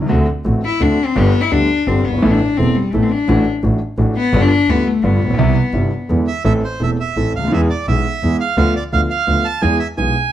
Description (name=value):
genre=tango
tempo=170 BPM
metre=3/4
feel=rubato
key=A harmonic minor from 6.5 s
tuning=A4 = 437 Hz
part: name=warm grand piano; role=accompaniment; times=0.0-10.1 s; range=E1 to A4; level=-18 LUFS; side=right 1 dB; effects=none
part: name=warm double bass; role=bass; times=0.0-10.1 s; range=E1 to E2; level=-19 LUFS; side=equal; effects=none
part: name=warm cello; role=second line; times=0.7-6.1 s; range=G3 to E4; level=-17 LUFS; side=left 4 dB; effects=none
part: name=bandoneon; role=melody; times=6.3-10.3 s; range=C5 to A5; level=-20 LUFS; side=right 6 dB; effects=plate reverb
room=light reverb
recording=none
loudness=-13 LUFS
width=side -12 dB against mid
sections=0.0-6.5 A section; 6.5-10.3 B section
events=cello solo 0.0-6.5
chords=0.1 D7; 1.2 G; 2.2 Asus2; 3.3 Dadd9/A; 4.3 G7; 5.4 C; 6.1 E7; 6.5 Am; 7.5 E; 8.6 Bdim/D; 9.6 E